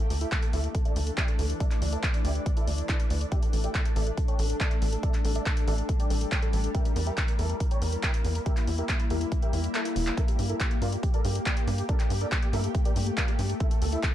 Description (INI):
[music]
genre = uplifting trance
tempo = 140 BPM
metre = 4/4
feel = straight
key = unclear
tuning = A4 = 441 Hz
[part]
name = supersaw chords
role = melody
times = 0.0-14.1 s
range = D4 to D6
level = -35 LUFS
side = equal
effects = sidechain pumping, low-pass filter, tape echo
[part]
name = shimmering ambient pad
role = sustained chords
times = 0.0-14.1 s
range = E3 to G4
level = -36 LUFS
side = left 2 dB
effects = chorus, built-in reverb, sidechain pumping
[part]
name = big-room dance drum kit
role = drums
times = 0.0-14.1 s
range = handclaps, hi-hat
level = -34 LUFS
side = equal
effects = none
[part]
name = tight sequencer bass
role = bass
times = 0.1-14.0 s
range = E1 to G2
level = -28 LUFS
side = equal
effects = sidechain pumping
[part]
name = electronic kick drum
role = drums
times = 0.3-14.1 s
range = none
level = -27 LUFS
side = equal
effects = none
[sound]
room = light reverb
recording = dark, warm production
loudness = -25 LUFS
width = side -12 dB against mid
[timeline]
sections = 0.0-14.1 A section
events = kick drops out 9.7-10.2; drum fill 9.7-10.2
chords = 0.0 Dsus2; 3.3 A7sus4; 6.7 Edim; 10.2 Gmadd9; 13.6 Dsus2